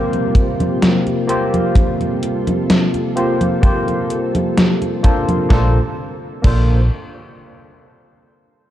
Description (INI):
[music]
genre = vaporwave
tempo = 64 BPM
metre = 4/4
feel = straight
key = Bb major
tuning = A4 = 438 Hz
[part]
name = barky tine electric piano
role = accompaniment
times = 0.0-6.8 s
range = Bb3 to C5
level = -20 LUFS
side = equal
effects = lush chorus, vintage 12-bit sampler grit, tape echo
[part]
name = soft string machine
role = sustained chords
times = 0.0-5.9 s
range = C3 to A4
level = -24 LUFS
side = equal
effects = ensemble chorus
[part]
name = gated 80s digital drum machine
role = drums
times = 0.1-6.6 s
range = congas, crash cymbal, hi-hat, snare drum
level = -19 LUFS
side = equal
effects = gated reverb, gated reverb snare, overdrive
[part]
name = kick drum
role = drums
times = 0.3-6.6 s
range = none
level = -17 LUFS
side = equal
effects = none
[part]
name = hollow-body short-scale fingered electric bass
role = bass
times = 5.5-6.9 s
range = Bb1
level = -14 LUFS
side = equal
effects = none
[sound]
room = light reverb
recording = dark, warm production, cassette tape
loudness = -14 LUFS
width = side -12 dB against mid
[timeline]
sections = 0.0-5.5 A section; 5.5-8.7 B section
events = none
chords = 0.0 C7sus4; 5.5 Bbmaj9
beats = 0.82 | 1.76 2.69 3.63 4.57 | 5.51 6.44